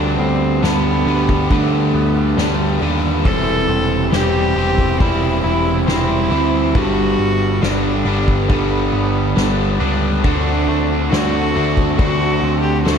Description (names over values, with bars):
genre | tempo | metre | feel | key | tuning
post-rock | 69 BPM | 4/4 | straight | unclear | A4 = 440 Hz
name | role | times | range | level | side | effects
warm cello | melody | 0.0-13.0 s | A3 to A4 | -22 LUFS | equal | slapback echo, digital delay
shimmering ambient pad | sustained chords | 0.0-13.0 s | G3 to C6 | -32 LUFS | equal | none
twangy electric guitar | arpeggios | 0.0-13.0 s | G2 to E4 | -25 LUFS | left 2 dB | slapback echo, digital delay
crunchy overdriven guitar | riff | 0.0-13.0 s | G2 to D4 | -21 LUFS | right 12 dB | none
overdriven semi-hollow guitar | riff | 0.0-13.0 s | D3 to C5 | -23 LUFS | left 12 dB | none
growling picked electric bass | bass | 0.0-13.0 s | E1 to Eb2 | -20 LUFS | left 1 dB | overdrive
soft-mallet drum kit | drums | 0.6-13.0 s | crash cymbal, kick drum, snare drum | -22 LUFS | equal | none
room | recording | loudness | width
light reverb, small room ambience | none | -14 LUFS | side -7 dB against mid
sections
0.0-13.0 A section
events
none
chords
0.0 Gmaj7/D; 3.3 Cmaj7/E; 6.8 Gmaj7; 10.2 D7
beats
0.64 1.51 2.38 | 3.26 4.13 5.01 5.88 | 6.75 7.63 8.50 9.37 | 10.24 11.12 11.99 12.86